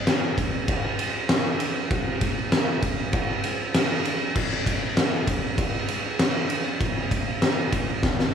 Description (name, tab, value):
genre	rock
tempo	98 BPM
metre	4/4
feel	straight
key	none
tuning	none
part	oversized low-tuned drum kit	drums	0.1-8.3 s	crash cymbal, kick drum, ride cymbal, snare drum	-22 LUFS	equal	none
room	light reverb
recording	small room ambience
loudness	-22 LUFS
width	side -7 dB against mid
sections	0.0-8.3 A section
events	drum fill 8.0-8.3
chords	none